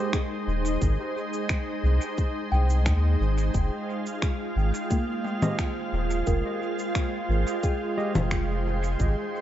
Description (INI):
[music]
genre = ambient dub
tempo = 88 BPM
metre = 4/4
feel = straight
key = F minor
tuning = A4 = 437 Hz
[part]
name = soft additive organ-like pad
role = sustained chords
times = 0.0-9.4 s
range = Ab3 to G5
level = -30 LUFS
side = right 1 dB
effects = ensemble chorus, built-in reverb
[part]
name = kalimba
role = arpeggios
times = 0.0-9.4 s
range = Ab3 to G5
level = -36 LUFS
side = left 2 dB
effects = dub echo
[part]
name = barky tine electric piano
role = stabs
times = 0.0-0.1, 5.4-8.1 s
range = Ab3 to Eb5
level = -36 LUFS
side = right 2 dB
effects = none
[part]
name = electronic finger snaps, cabasa and congas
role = drums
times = 0.1-9.1 s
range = none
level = -31 LUFS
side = left 1 dB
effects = studio reverb, dub echo
[part]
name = electronic kick drum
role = drums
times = 0.1-9.1 s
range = none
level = -27 LUFS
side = equal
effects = studio reverb
[part]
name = soft dub sub bass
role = bass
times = 0.5-9.2 s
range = Eb1 to Eb2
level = -24 LUFS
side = equal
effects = none
[sound]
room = light reverb, digital ambience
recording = nothing above 7.7 kHz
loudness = -24 LUFS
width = side -12 dB against mid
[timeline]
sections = 0.0-9.4 A section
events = none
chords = 0.0 Fm9